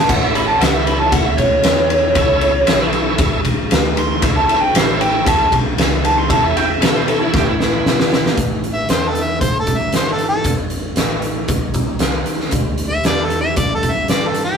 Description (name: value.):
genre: blues rock power trio and southern rock.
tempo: 116 BPM.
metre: 4/4.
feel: straight.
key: A mixolydian.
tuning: A4 = 441 Hz.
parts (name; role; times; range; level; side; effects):
biting lead guitar; second line; 0.0-8.4 s; E4 to C6; -17 LUFS; right 1 dB; overdrive.
vintage muted fingered electric bass; bass; 0.0-14.6 s; F1 to B2; -24 LUFS; equal; none.
bright tonewheel organ; sustained chords; 0.1-7.5 s; E4 to E5; -22 LUFS; equal; slow rotary speaker, overdrive, chorus vibrato.
oversized low-tuned drum kit; drums; 0.1-14.5 s; crash cymbal, hi-hat, kick drum, ride cymbal, snare drum; -16 LUFS; equal; none.
bright harmonica; melody; 8.7-14.6 s; G4 to E5; -19 LUFS; equal; overdrive.
room: moderate small room ambience, RT60 0.5 s.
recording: rough rehearsal-room recording, warm saturation.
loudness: -14 LUFS.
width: side -6 dB against mid.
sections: 0.0-8.4 A section; 8.4-14.6 B section.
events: lead electric guitar solo 0.0-8.4; drum fill 7.3-8.4.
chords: 0.0 A; 8.4 A5; 10.4 F; 12.5 G5.